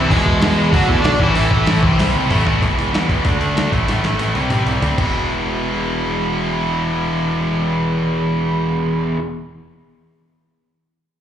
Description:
punk rock; 190 BPM; 4/4; straight; E mixolydian; A4 = 436 Hz
overdriven semi-hollow guitar; melody; 0.0-2.0 s; E3 to D5; -18 LUFS; equal; slapback echo
high-gain distorted guitar; riff; 0.0-2.6 s; E2 to D4; -23 LUFS; left 1 dB; distortion, slapback echo
tight distorted guitar; riff; 0.0-9.2 s; E2 to D4; -22 LUFS; left 9 dB; distortion
tight distorted guitar; riff; 0.0-9.2 s; A2 to F#4; -21 LUFS; right 7 dB; distortion
growling picked electric bass; bass; 0.0-9.1 s; E1 to C3; -22 LUFS; equal; overdrive
dusty soul sampler-style drum kit; drums; 0.1-5.1 s; crash cymbal, hi-hat, kick drum, snare drum, toms; -20 LUFS; equal
little or no reverb; live gig heard through the venue's PA, club reverb; -15 LUFS; side -9 dB against mid
0.0-2.6 A section; 2.6-5.1 B section; 5.1-7.7 C section
drum fill 2.0-2.6, 3.9-5.1
0.1 E; 0.7 D; 1.2 A; 1.8 C; 2.3 A; 2.6 E; 3.3 D; 3.7 A; 4.4 C; 5.0 E

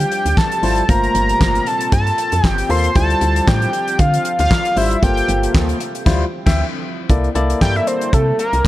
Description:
early-eighties boogie funk; 116 BPM; 4/4; swing 56% on 16ths; D minor; A4 = 443 Hz
fat analog lead; melody; 0.0-8.7 s; A4 to C6; -18 LUFS; equal; chorus, tape echo
chorused pulse-width pad; sustained chords; 0.0-8.7 s; Bb2 to A4; -28 LUFS; right 1 dB
woody FM bass; bass; 0.0-8.6 s; G1 to D3; -19 LUFS; equal
damped 70s drum kit; drums; 0.0-8.7 s; crash cymbal, handclaps, hi-hat, kick drum, snare drum; -18 LUFS; equal; gated reverb
barky tine electric piano; accompaniment; 0.6-8.1 s; G3 to G5; -22 LUFS; left 3 dB; overdrive
studio ambience; -14 LUFS; side -15 dB against mid
0.0-7.1 A section; 7.1-8.7 B section
band accent 6.1-7.1; analog synth lead solo 7.1-8.7
0.0 Dm11; 0.9 Gm11; 3.0 Dm11; 5.0 Gm11; 6.1 Dm11; 7.1 C13

